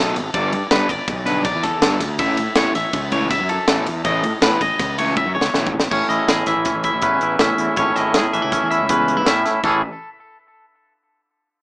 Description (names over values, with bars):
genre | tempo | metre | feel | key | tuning
math rock and midwest emo | 162 BPM | 5/4 | straight | A major | A4 = 440 Hz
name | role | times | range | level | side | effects
twangy electric guitar | arpeggios | 0.0-9.8 s | A4 to E5 | -21 LUFS | left 1 dB | tape echo
overdriven semi-hollow guitar | riff | 0.0-5.8 s | B2 to E4 | -23 LUFS | equal | none
fuzz fingered electric bass | bass | 0.0-9.8 s | G1 to A2 | -25 LUFS | equal | overdrive
crisp fusion drum kit | drums | 0.2-9.7 s | crash cymbal, hi-hat, kick drum, ride cymbal, snare drum | -20 LUFS | equal | none
twangy electric guitar | accompaniment | 5.9-9.8 s | E2 to G#4 | -18 LUFS | right 1 dB | none
room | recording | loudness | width
studio reverb | rough home demo mix, small speaker sound | -16 LUFS | side -26 dB against mid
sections
0.0-5.9 A section; 5.9-9.6 B section; 9.6-11.5 C section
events
drum fill 5.2-5.9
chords
0.3 G; 2.2 A; 4.0 Aadd9; 5.9 Amaj9; 9.6 A